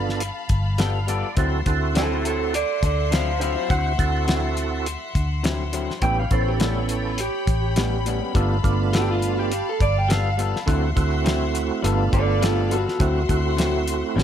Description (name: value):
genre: straight-eighth soul blues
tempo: 103 BPM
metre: 4/4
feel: swing 55% on 16ths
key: D mixolydian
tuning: A4 = 440 Hz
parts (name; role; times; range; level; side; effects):
- electric guitar through a small old amp; melody; 0.0-14.2 s; E4 to G5; -26 LUFS; right 1 dB; none
- overdriven tonewheel organ; accompaniment; 0.0-14.2 s; A3 to G5; -26 LUFS; right 8 dB; slow rotary speaker, chorus vibrato
- warm studio string section; sustained chords; 0.0-14.2 s; C#5 to C6; -32 LUFS; left 5 dB; none
- vintage muted fingered electric bass; bass; 0.0-14.2 s; G1 to D2; -24 LUFS; equal; none
- cloth-damped thuddy drum kit; drums; 0.1-14.2 s; hi-hat, kick drum, snare drum; -25 LUFS; left 1 dB; none
- electric guitar through a small old amp; stabs; 0.8-14.2 s; A2 to A4; -30 LUFS; left 7 dB; none
room: studio ambience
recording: none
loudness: -20 LUFS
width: side -9 dB against mid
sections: 0.0-14.2 A section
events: clean electric guitar solo 0.0-14.2; tonewheel organ fill 0.5-1.4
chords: 0.0 G9; 1.4 D9; 6.0 A9; 8.4 G9; 10.7 D9; 11.8 G9; 13.0 D9